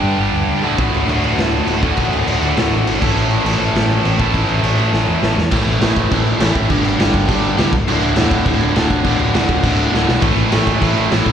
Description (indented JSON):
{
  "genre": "punk rock",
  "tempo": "203 BPM",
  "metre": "4/4",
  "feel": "straight",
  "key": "D major",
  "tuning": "A4 = 440 Hz",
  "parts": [
    { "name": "biting overdriven guitar", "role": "riff", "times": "0.0-11.3 s", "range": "D2 to A4", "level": "-21 LUFS", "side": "left 11 dB", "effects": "slapback echo" },
    { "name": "heavy high-gain guitar", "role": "riff", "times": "0.0-5.4, 10.2-11.3 s", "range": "D2 to A4", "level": "-22 LUFS", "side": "right 3 dB", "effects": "distortion, slapback echo" },
    { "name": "raw garage guitar", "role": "riff", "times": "0.0-11.3 s", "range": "D2 to A3", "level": "-20 LUFS", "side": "right 10 dB", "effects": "overdrive, slapback echo" },
    { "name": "mellow fretless electric bass", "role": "bass", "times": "0.0-11.3 s", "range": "D1 to A2", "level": "-20 LUFS", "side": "equal", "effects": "none" },
    { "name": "raw garage drum kit", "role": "drums", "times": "0.8-11.3 s", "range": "crash cymbal, kick drum, snare drum", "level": "-18 LUFS", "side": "equal", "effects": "none" }
  ],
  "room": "little or no reverb",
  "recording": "live gig heard through the venue's PA, recital hall reverb",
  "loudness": "-13 LUFS",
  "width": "side -8 dB against mid",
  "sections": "0.0-5.5 A section; 5.5-11.3 B section",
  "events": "half time 0.0-5.5; drum fill 4.9-5.5, 9.9",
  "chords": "0.0 G; 0.6 D; 3.0 A; 5.5 A5; 6.7 G5; 7.7 D5; 10.2 A5"
}